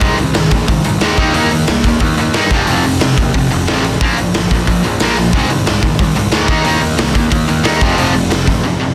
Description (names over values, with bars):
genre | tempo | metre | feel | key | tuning
punk rock | 181 BPM | 4/4 | straight | unclear | A4 = 443 Hz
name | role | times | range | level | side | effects
distorted electric guitar | riff | 0.0-8.9 s | F2 to Eb4 | -20 LUFS | equal | distortion
distorted electric guitar | riff | 0.0-8.9 s | F2 to Eb4 | -19 LUFS | equal | overdrive
fuzz picked electric bass | bass | 0.0-8.6 s | F1 to G2 | -20 LUFS | equal | overdrive
raw garage drum kit | drums | 0.0-8.6 s | hi-hat, kick drum, snare drum | -18 LUFS | equal | none
room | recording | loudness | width
light reverb | dense, heavily limited modern master | -13 LUFS | mono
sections
0.0-8.9 A section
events
none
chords
0.0 Ab; 1.2 Eb5; 2.5 F; 4.0 Bb5; 5.3 Ab; 6.5 Eb5; 7.8 F